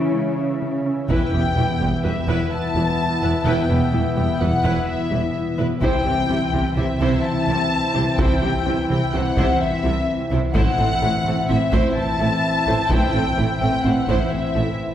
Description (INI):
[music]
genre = cinematic, hybrid orchestral and electronic film score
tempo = 127 BPM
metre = 5/4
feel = straight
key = E minor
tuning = A4 = 440 Hz
[part]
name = warm French horn section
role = sustained chords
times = 0.0-0.6 s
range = E4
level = -27 LUFS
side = left 7 dB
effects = none
[part]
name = warm analog pad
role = sustained chords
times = 0.0-14.9 s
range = E3 to E5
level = -24 LUFS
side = left 1 dB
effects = chorus
[part]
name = tight sequenced synth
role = arpeggios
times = 0.0-14.7 s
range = C3 to A4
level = -30 LUFS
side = right 1 dB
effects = none
[part]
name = rich symphonic cello section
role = bass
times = 0.0-14.6 s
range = E2 to C#3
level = -27 LUFS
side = right 2 dB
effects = none
[part]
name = warm symphonic violin section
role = melody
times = 1.1-14.9 s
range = E5 to A5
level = -24 LUFS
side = left 3 dB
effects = none
[part]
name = warm symphonic viola section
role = accompaniment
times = 1.1-14.6 s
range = G3 to C5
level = -27 LUFS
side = right 1 dB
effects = none
[part]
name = rich studio double bass section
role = bass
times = 1.1-14.6 s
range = E1 to C2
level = -25 LUFS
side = right 2 dB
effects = none
[part]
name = taiko ensemble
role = drums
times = 1.1-2.0, 5.8-14.5 s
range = none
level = -25 LUFS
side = equal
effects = none
[sound]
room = wet scoring stage reverb, RT60 1.9 s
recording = heard from further back in the room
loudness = -18 LUFS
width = side -10 dB against mid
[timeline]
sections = 0.0-1.1 A section; 1.1-14.9 B section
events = none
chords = 0.0 C#m; 1.1 Em; 5.8 C; 10.5 Am